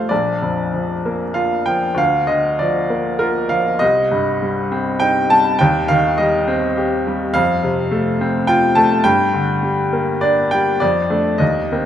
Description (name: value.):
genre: classical, romantic character piece for solo piano.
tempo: 91-108 BPM.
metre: 3/4.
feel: rubato.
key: Bb major.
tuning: A4 = 440 Hz.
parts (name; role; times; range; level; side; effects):
bright baby grand piano; solo; 0.0-11.9 s; Bb1 to A5; -15 LUFS; equal; none.
room: moderate concert hall reverb, RT60 2.0 s.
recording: none.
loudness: -15 LUFS.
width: side -10 dB against mid.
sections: 0.1-11.9 A section.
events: none.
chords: 0.1 Bb; 2.0 Bb/D; 3.8 Cm; 5.6 Cm/Eb; 7.4 F; 9.1 Gm; 10.8 Dm/F.